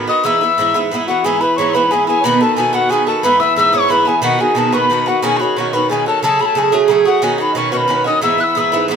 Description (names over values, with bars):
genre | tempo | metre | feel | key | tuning
celtic folk, Celtic jig | 120 BPM (dotted quarters) | 6/8 | straight | E major | A4 = 441 Hz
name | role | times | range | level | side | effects
Irish bouzouki | accompaniment | 0.0-9.0 s | G#2 to G#4 | -16 LUFS | right 4 dB | none
breathy mellow tin whistle | melody | 0.1-8.9 s | F#5 to F#6 | -16 LUFS | left 4 dB | plate reverb
accordion | second line | 0.1-8.8 s | F#4 to E5 | -20 LUFS | right 2 dB | none
room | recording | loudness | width
wet studio reverb, RT60 0.9 s | none | -12 LUFS | side -7 dB against mid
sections
0.0-1.2 A section; 1.2-9.0 B section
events
none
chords
0.2 E; 2.2 B; 3.2 E; 4.2 B; 5.2 Badd9; 6.2 F#madd9; 7.2 Badd9; 8.2 E